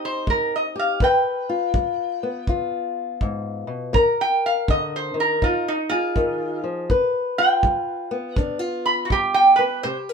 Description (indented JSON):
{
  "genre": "acoustic country blues, solo or duo",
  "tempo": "82 BPM",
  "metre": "4/4",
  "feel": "swing 64% on 8ths",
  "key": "unclear",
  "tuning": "A4 = 441 Hz",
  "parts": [
    { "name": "lap resonator guitar", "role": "melody", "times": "0.0-10.0 s", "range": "Eb4 to B5", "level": "-19 LUFS", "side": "right 2 dB", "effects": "none" },
    { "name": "fingerpicked old ladder-braced acoustic guitar", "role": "accompaniment", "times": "0.0-10.1 s", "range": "G2 to B4", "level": "-24 LUFS", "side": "left 3 dB", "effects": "none" },
    { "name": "kick drum", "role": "drums", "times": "0.3-9.3 s", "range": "none", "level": "-23 LUFS", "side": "equal", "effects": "none" }
  ],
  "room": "moderate booth ambience, RT60 0.3 s",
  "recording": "minimal, uncompressed stereo recording",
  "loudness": "-19 LUFS",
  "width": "side -6 dB against mid",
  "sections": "0.0-9.8 A section",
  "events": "resonator guitar played with a steel bar solo 0.0-9.8",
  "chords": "0.0 Abmaj7; 1.0 G7; 4.0 Cm7; 5.4 Fm7; 6.9 G7"
}